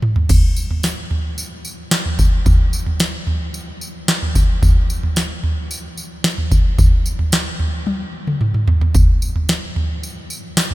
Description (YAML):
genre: dream pop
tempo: 111 BPM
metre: 4/4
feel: straight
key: none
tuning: none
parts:
  - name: booming analog drum machine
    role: drums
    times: 0.0-10.7 s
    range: crash cymbal, kick drum, snare drum, tambourine, toms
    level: -15 LUFS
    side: equal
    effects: none
room: light reverb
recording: none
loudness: -15 LUFS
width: side -18 dB against mid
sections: 0.3-10.7 A section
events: drum fill 0.0-0.3, 7.9-8.9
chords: none